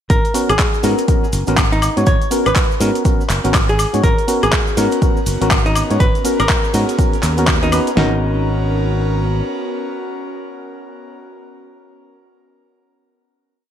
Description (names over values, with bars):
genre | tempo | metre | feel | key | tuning
deep house | 122 BPM | 4/4 | swing 61% on 16ths | G# minor | A4 = 442 Hz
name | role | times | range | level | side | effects
archtop guitar, miked and amplified | melody | 0.1-11.2 s | D#4 to C#5 | -22 LUFS | equal | digital delay
modern bright fingered electric bass | bass | 0.1-9.4 s | F#1 to G#2 | -19 LUFS | equal | sidechain pumping
deep house drum kit | drums | 0.1-8.1 s | kick drum, snare drum | -16 LUFS | equal | none
deep house drum kit | drums | 0.1-7.9 s | handclaps, hi-hat, woodblock | -21 LUFS | left 1 dB | none
cabasa | percussion | 0.1-7.9 s | none | -31 LUFS | right 3 dB | none
percussive organ stab | stabs | 0.3-11.2 s | B3 to C#5 | -20 LUFS | equal | chorus, sidechain pumping, digital delay
airy breathy pad | sustained chords | 4.0-11.2 s | B3 to A#4 | -26 LUFS | equal | chorus, sidechain pumping
room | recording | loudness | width
moderate lush hall reverb, RT60 1.6 s | bright 1980s-style digital production | -13 LUFS | side -10 dB against mid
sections
0.1-8.0 drop; 8.0-11.9 final chord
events
drop 0.1-8.0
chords
0.1 G#m11